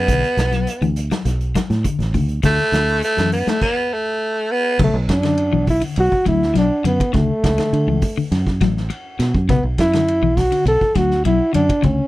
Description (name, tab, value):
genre	afrobeat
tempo	102 BPM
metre	4/4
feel	straight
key	B minor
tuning	A4 = 440 Hz
part	raspy baritone saxophone	melody	0.0-4.8 s	A3 to B3	-18 LUFS	right 1 dB	none
part	fingered electric bass	bass	0.0-12.0 s	A1 to D3	-19 LUFS	right 1 dB	none
part	clean electric guitar	arpeggios	0.1-12.0 s	C#3 to A3	-22 LUFS	left 6 dB	tremolo
part	vintage drum kit	drums	0.1-12.0 s	crash cymbal, hi-hat, kick drum, ride cymbal, snare drum	-24 LUFS	right 1 dB	none
part	trombone with bucket mute	melody	4.8-12.1 s	A3 to A4	-18 LUFS	right 1 dB	none
room	little or no reverb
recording	none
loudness	-15 LUFS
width	side -17 dB against mid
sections	0.0-4.8 A section; 4.8-12.1 B section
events	baritone saxophone solo 0.0-4.8; stop 3.6-4.8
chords	0.1 Bm7; 2.4 D; 4.8 Bm; 7.1 Dmaj7; 9.5 Bm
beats	| 0.09 0.68 1.26 1.85 | 2.44 3.03 3.62 4.21 | 4.79 5.38 5.97 6.56 | 7.15 7.74 8.32 8.91 | 9.50 10.09 10.67 11.26 | 11.85